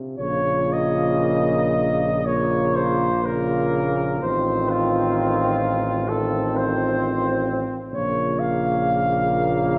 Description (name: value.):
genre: classical, hymn-like piece for brass band.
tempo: 54-66 BPM.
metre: 4/4.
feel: rubato.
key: Bb minor.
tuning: A4 = 440 Hz.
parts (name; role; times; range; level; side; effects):
mellow trombone; accompaniment; 0.0-9.8 s; C3 to Eb3; -30 LUFS; equal; none.
mellow flugelhorn; melody; 0.2-9.8 s; F4 to F5; -26 LUFS; equal; none.
mellow French horn section; second line; 0.2-9.8 s; F4; -30 LUFS; equal; none.
clear trombone section; accompaniment; 0.2-9.8 s; Bb3 to C4; -30 LUFS; equal; none.
warm tuba; bass; 0.2-9.8 s; A1 to Bb1; -29 LUFS; equal; none.
room: wet scoring stage reverb, RT60 1.9 s.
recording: heard from further back in the room.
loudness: -22 LUFS.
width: mono.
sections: 0.2-9.8 A section.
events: none.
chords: 0.2 Bbm; 4.2 F7/A; 7.9 Bbm.